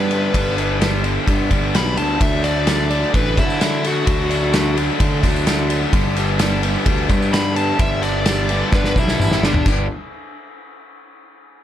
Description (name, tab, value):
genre	indie rock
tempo	129 BPM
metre	4/4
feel	straight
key	G major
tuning	A4 = 440 Hz
part	overdriven electric guitar	melody	0.0-9.7 s	D4 to B5	-24 LUFS	left 1 dB	spring reverb, analog delay
part	overdriven electric guitar	riff	0.0-9.9 s	G2 to D4	-22 LUFS	equal	none
part	fuzz fingered electric bass	bass	0.0-9.9 s	G1 to D3	-21 LUFS	equal	overdrive
part	loose indie drum kit	drums	0.1-9.8 s	crash cymbal, kick drum, ride cymbal, snare drum, toms	-20 LUFS	equal	none
part	tambourine	percussion	2.5-9.9 s	none	-38 LUFS	right 7 dB	none
room	little or no reverb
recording	none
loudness	-15 LUFS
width	side -11 dB against mid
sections	0.0-9.7 A section; 9.7-11.5 B section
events	overdriven electric guitar solo 0.0-9.7; drum fill 8.7-9.7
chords	0.0 G; 2.2 D; 5.9 G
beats	| 0.35 0.81 1.28 1.75 | 2.21 2.67 3.14 3.61 | 4.07 4.54 5.00 5.47 | 5.93 6.40 6.86 7.33 | 7.79 8.26 8.73 9.19 | 9.66